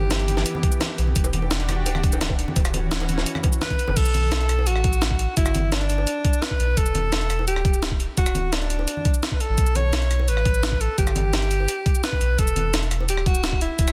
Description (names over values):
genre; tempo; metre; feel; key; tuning
liquid drum and bass; 171 BPM; 4/4; straight; unclear; A4 = 440 Hz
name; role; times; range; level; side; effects
breathy alto saxophone; melody; 0.0-1.0, 3.6-13.9 s; D4 to C#5; -29 LUFS; equal; tape echo
lush unison pad; sustained chords; 0.0-4.0 s; E3 to G4; -33 LUFS; equal; chorus, sidechain pumping
warm sub bass; bass; 0.0-13.9 s; D1 to B1; -26 LUFS; equal; none
jungle sampler-style drum kit; drums; 0.1-13.9 s; crash cymbal, hi-hat, rim click, shaker, snare drum; -30 LUFS; equal; none
bongos and congas; percussion; 0.1-13.1 s; none; -34 LUFS; equal; none
electronic kick drum; drums; 0.6-13.9 s; none; -24 LUFS; equal; overdrive
room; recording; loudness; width
light reverb; dense, heavily limited modern master; -22 LUFS; mono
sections
0.0-4.0 A section; 4.0-13.9 A section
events
drop 0.0-4.0, 4.0-13.9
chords
0.0 G6; 1.2 Em9; 2.6 Dmaj9; 4.0 B5; 5.4 G6; 6.8 Em7; 8.2 D; 9.6 Bsus2; 11.0 G; 12.4 Esus2